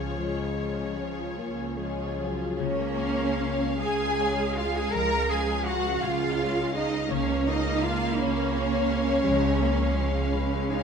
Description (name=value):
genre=classical, slow romantic movement for symphony orchestra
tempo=48-57 BPM (dotted quarters)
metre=12/8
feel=rubato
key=Db major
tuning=A4 = 439 Hz
part: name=clear symphonic violin section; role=melody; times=0.0-10.8 s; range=Db5 to F5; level=-39 LUFS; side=left 4 dB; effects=none
part: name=warm symphonic violin section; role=second line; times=0.0-10.8 s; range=Ab4 to Bb5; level=-32 LUFS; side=left 4 dB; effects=none
part: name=rich symphonic viola section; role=accompaniment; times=0.0-10.8 s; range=F3 to F4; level=-32 LUFS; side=right 2 dB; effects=none
part: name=dark French horn section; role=sustained chords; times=0.0-2.6 s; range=Db3 to Bb3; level=-35 LUFS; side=left 4 dB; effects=none
part: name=concert harp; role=arpeggios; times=0.0-10.8 s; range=Db3 to Cb6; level=-35 LUFS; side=left 7 dB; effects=none
part: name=bright symphonic double bass section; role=bass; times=0.0-10.8 s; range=Db2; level=-31 LUFS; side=right 3 dB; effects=none
part: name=warm symphonic cello section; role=bass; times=0.0-10.8 s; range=Db3 to Bb4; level=-29 LUFS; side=right 2 dB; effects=none
room=moderate concert hall reverb, RT60 2.1 s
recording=none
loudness=-24 LUFS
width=side -6 dB against mid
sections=0.0-2.6 A section; 2.6-10.8 A section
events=none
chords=0.0 Db; 7.1 Db7